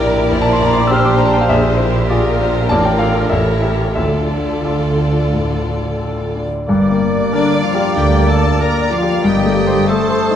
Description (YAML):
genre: classical, romantic movement for piano and orchestra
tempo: 88-102 BPM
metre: 4/4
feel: rubato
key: D minor, G minor from 6.7 s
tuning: A4 = 440 Hz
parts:
  - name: clear baby grand piano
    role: melody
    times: 0.0-10.4 s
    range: A1 to F6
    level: -16 LUFS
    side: left 2 dB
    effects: none
  - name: clear chamber violin section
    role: melody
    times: 0.0-10.4 s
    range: Bb4 to Bb5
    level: -26 LUFS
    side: left 2 dB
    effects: none
  - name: rich chamber violin section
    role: second line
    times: 0.0-10.4 s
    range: D4 to Eb5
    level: -23 LUFS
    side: left 2 dB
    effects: none
  - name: rich symphonic viola section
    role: accompaniment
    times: 0.0-10.4 s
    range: D4 to D5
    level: -23 LUFS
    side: equal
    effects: none
  - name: rich chamber double bass section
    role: bass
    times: 0.0-9.8 s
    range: G1 to D2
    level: -20 LUFS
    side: right 3 dB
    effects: none
  - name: warm chamber cello section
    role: bass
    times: 0.0-9.8 s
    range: D2 to D3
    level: -22 LUFS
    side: right 3 dB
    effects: none
  - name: bright small flute group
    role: second line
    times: 6.7-10.4 s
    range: D6 to Eb6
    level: -27 LUFS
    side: right 2 dB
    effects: none
  - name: clear oboe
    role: second line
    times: 6.7-10.4 s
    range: C5 to D5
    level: -25 LUFS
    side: right 1 dB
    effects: none
  - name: mellow bassoon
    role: accompaniment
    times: 6.7-10.4 s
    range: A3 to Bb3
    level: -24 LUFS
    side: right 2 dB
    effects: none
  - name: clear clarinet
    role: second line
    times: 7.3-10.4 s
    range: D4 to Bb4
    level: -24 LUFS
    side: left 1 dB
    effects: none
  - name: dark French horn section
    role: sustained chords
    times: 7.3-10.4 s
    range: D3 to Bb3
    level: -23 LUFS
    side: left 4 dB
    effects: none
room: moderate scoring stage reverb, RT60 1.7 s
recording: dark, warm production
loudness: -12 LUFS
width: side -9 dB against mid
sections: 0.0-6.7 A section; 6.7-10.4 B section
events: none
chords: 0.0 Gm/Bb; 1.5 Bb7; 2.7 Dm/A; 4.0 Dm; 6.7 Gm; 9.2 Am7b5/G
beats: 0.30 0.90 | 1.49 2.09 2.69 3.31 | 3.96 4.65 5.33 6.00 | 6.68 7.33 7.97 8.60 | 9.24 9.88